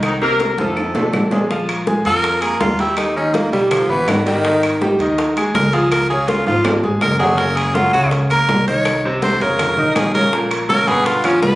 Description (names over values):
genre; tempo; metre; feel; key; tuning
latin, salsa; 163 BPM; 4/4; straight; Bb minor; A4 = 439 Hz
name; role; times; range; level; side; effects
dark horn section; melody; 0.0-1.3 s; Eb3 to Bb4; -20 LUFS; left 2 dB; plate reverb
bright concert grand piano; accompaniment; 0.0-11.5 s; Bb2 to B5; -19 LUFS; equal; none
upright bass; bass; 0.0-11.6 s; Gb1 to F2; -24 LUFS; equal; none
bongos; percussion; 0.0-11.6 s; none; -24 LUFS; left 2 dB; none
claves; percussion; 0.0-11.4 s; none; -26 LUFS; left 1 dB; none
congas; percussion; 0.0-11.6 s; none; -24 LUFS; equal; none
timbales; percussion; 0.0-11.6 s; none; -25 LUFS; right 2 dB; none
raspy tenor saxophone; melody; 2.1-11.6 s; Eb3 to Db5; -18 LUFS; equal; plate reverb
room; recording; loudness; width
moderate studio reverb, RT60 0.7 s; recorded on a phone in the room, studio reverb, nothing above 11.0 kHz; -14 LUFS; side -17 dB against mid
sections
0.0-1.5 A section; 1.5-11.6 B section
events
drum fill 0.4-1.5, 6.5-7.4; tenor saxophone solo 1.5-11.6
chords
0.0 Cm7b5; 0.8 Fadd11; 1.5 Bb5; 3.0 Ebaug; 4.4 Ab5; 5.9 Db; 7.4 Gb6; 8.9 Dbmaj13/C; 9.6 Bbmadd11; 10.3 Bbm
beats
| 0.03 0.40 0.77 1.14 | 1.50 1.87 2.24 2.61 | 2.98 3.35 3.71 4.08 | 4.45 4.82 5.18 5.55 | 5.92 6.29 6.65 7.02 | 7.39 7.76 8.12 8.49 | 8.86 9.23 9.59 9.96 | 10.33 10.70 11.06 11.43